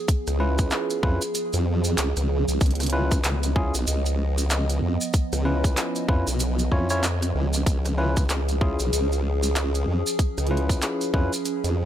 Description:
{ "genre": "glitch hop", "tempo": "95 BPM", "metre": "4/4", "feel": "swing 60% on 16ths", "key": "unclear", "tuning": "A4 = 440 Hz", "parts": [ { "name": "warbly tape-like pad", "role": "sustained chords", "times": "0.0-11.9 s", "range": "E#3 to D#5", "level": "-30 LUFS", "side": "right 2 dB", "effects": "chorus, built-in reverb, phaser, sidechain pumping" }, { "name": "drum and bass drum kit", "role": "drums", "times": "0.1-11.7 s", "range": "handclaps, hi-hat, rim click", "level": "-29 LUFS", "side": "equal", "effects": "overdrive" }, { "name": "electronic kick drum", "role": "drums", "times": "0.1-11.3 s", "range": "none", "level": "-22 LUFS", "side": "equal", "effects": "overdrive" }, { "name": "maracas", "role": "percussion", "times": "0.1-11.7 s", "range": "none", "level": "-32 LUFS", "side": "right 2 dB", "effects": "none" }, { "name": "formant-sweep wobble bass", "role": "bass", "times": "0.3-11.9 s", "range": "B1 to E#2", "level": "-24 LUFS", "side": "equal", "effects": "chorus" }, { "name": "bell-like tine electric piano", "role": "stabs", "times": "0.4-11.3 s", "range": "C#4 to C#5", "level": "-29 LUFS", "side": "left 1 dB", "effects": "sidechain pumping, tape echo" } ], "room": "digital ambience", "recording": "none", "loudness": "-21 LUFS", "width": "side -11 dB against mid", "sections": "0.0-11.9 A section", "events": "none", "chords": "0.0 C#7#9" }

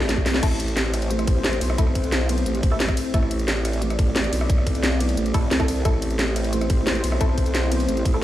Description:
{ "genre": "dark technical drum and bass", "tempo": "177 BPM", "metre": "4/4", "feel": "straight", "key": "A minor", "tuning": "A4 = 441 Hz", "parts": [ { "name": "dark analog pad", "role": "sustained chords", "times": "0.0-8.2 s", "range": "A3 to D5", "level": "-28 LUFS", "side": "equal", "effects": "chorus, sidechain pumping" }, { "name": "filtered dub chord stab", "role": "stabs", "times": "0.0-3.2, 5.3-8.2 s", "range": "A3 to A4", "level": "-32 LUFS", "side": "left 2 dB", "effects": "phaser, dub echo" }, { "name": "growl bass", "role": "bass", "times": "0.0-8.2 s", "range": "A1 to C2", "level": "-24 LUFS", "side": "equal", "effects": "chorus, overdrive, sidechain pumping" }, { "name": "drum and bass drum kit", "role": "drums", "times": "0.0-8.1 s", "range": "crash cymbal, hi-hat, ride cymbal, rim click, snare drum", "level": "-26 LUFS", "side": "equal", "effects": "none" }, { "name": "electronic kick drum", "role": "drums", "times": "0.2-8.1 s", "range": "none", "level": "-21 LUFS", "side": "equal", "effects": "none" } ], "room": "light reverb", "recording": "played on a big sound system in a bare room, large studio reverb", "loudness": "-19 LUFS", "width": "side -13 dB against mid", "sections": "0.4-8.2 A section", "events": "drum fill 0.0-0.4; drop 0.4-8.2", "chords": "0.4 Am" }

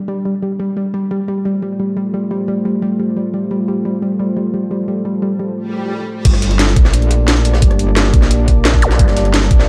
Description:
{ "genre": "dark technical drum and bass", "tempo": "175 BPM", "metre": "4/4", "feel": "straight", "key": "G minor", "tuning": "A4 = 440 Hz", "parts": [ { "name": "deep dark ambient pad", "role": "sustained chords", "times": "0.2-9.7 s", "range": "A3 to D5", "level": "-24 LUFS", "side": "equal", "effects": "chorus, built-in reverb, sidechain pumping" }, { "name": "soft round pluck", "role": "arpeggios", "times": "0.1-5.5 s", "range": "G3", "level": "-21 LUFS", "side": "equal", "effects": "chorus, sidechain pumping, dub echo" }, { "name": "swell and zap", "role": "sound effects", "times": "5.7-6.3, 8.8-8.9 s", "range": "none", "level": "-25 LUFS", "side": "equal", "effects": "none" }, { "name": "drum and bass drum kit", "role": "drums", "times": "6.2-9.7 s", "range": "crash cymbal, hi-hat, rim click, snare drum", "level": "-21 LUFS", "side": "equal", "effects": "low-pass filter on hats, low-pass filter on cymbals, low-pass filter on snare, low-pass filter on room" }, { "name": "metallic wobble bass", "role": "bass", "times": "6.3-9.7 s", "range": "G1 to Bb1", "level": "-16 LUFS", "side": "equal", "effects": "chorus, overdrive" }, { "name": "electronic kick drum", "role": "drums", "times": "6.3-9.6 s", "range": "none", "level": "-14 LUFS", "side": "equal", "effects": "overdrive" }, { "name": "jungle sampler-style drum kit", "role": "drums", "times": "6.3-9.7 s", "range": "hi-hat, snare drum", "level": "-28 LUFS", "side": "equal", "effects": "high-pass filter on hats, high-pass filter on snare" } ], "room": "light reverb, digital ambience", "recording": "dark, warm production", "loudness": "-15 LUFS", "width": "mono", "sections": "0.0-6.3 A section; 6.3-9.7 B section", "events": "filter sweep on ambient pad 0.0-6.3; swell 5.7-6.3; drop 6.3-9.7", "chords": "0.0 Gm; 0.8 Fadd9; 6.3 Gm" }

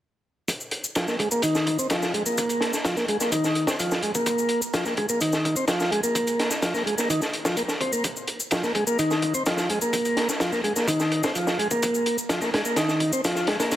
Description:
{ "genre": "breakbeat, breaks", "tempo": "127 BPM", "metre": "4/4", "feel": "straight", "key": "F minor pentatonic", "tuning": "A4 = 444 Hz", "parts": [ { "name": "crunchy breakbeat drum kit", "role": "drums", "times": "0.5-13.8 s", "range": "hi-hat, kick drum, snare drum", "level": "-26 LUFS", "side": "equal", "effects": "high-pass filter on kick, high-pass filter on hats, high-pass filter on snare, high-pass filter on room" }, { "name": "shaker", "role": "drums", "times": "0.5-13.8 s", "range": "none", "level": "-31 LUFS", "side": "left 2 dB", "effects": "overdrive" }, { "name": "tonewheel organ", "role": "riff", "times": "1.0-13.8 s", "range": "Eb3 to C4", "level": "-24 LUFS", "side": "equal", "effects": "slow rotary speaker, low-pass filter, dub echo" } ], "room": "moderate plate reverb, RT60 1.7 s, small room ambience", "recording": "heavily compressed radio sound", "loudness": "-22 LUFS", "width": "side -12 dB against mid", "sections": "0.5-13.8 A section", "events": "filter sweep on tonewheel organ 0.5-13.8", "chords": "none" }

